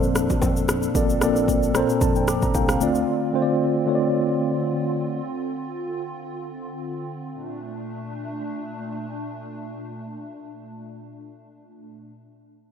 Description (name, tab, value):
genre	amapiano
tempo	113 BPM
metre	4/4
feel	swing 55% on 16ths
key	Bb major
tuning	A4 = 444 Hz
part	mellow tine electric piano	accompaniment	0.0-5.2 s	Bb2 to D6	-21 LUFS	equal	medium stereo tremolo
part	hollow soft pad	sustained chords	0.0-12.1 s	Bb2 to A4	-31 LUFS	equal	ensemble chorus
part	fingered electric bass	bass	0.0-3.0 s	Bb1 to F2	-29 LUFS	equal	none
part	deep house drum kit	drums	0.0-3.1 s	kick drum, rim click, shaker	-24 LUFS	equal	none
part	bongos	percussion	0.3-0.8 s	none	-33 LUFS	left 4 dB	none
room	moderate lush hall reverb, RT60 2.1 s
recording	rough home demo mix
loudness	-21 LUFS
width	side -8 dB against mid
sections	0.0-7.3 A section; 7.3-11.6 B section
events	tine electric piano fill 1.5-3.1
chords	0.0 Bbmaj7; 2.8 Dm7; 7.3 Bbmaj7